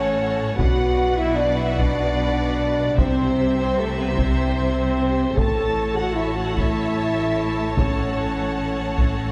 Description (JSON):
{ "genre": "cinematic, epic orchestral film score", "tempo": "100 BPM", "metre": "4/4", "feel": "straight", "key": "B minor", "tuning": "A4 = 440 Hz", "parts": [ { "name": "rich symphonic violin section", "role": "melody", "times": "0.0-9.3 s", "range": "A4 to A5", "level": "-33 LUFS", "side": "equal", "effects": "none" }, { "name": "rich symphonic violin section", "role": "second line", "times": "0.0-9.3 s", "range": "D5 to A5", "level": "-34 LUFS", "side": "equal", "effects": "none" }, { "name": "rich symphonic viola section", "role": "accompaniment", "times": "0.0-9.3 s", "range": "G4 to C#5", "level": "-34 LUFS", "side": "equal", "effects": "none" }, { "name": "warm French horn section", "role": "sustained chords", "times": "0.0-9.3 s", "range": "A3 to A4", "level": "-25 LUFS", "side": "equal", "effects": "none" }, { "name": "rich symphonic cello section", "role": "bass", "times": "0.0-9.3 s", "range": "A2 to C3", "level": "-31 LUFS", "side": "equal", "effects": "none" }, { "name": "warm studio double bass section", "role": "bass", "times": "0.0-9.3 s", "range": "A1 to C2", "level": "-29 LUFS", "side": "equal", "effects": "none" }, { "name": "taiko ensemble", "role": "drums", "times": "0.6-9.3 s", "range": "none", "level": "-25 LUFS", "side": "equal", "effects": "none" } ], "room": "moderate scoring stage reverb, RT60 1.8 s", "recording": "none", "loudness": "-21 LUFS", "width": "mono", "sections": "0.0-9.3 A section", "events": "none", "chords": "0.0 F#m/A; 0.6 Bm; 3.0 C; 5.4 A; 7.8 F#m/A" }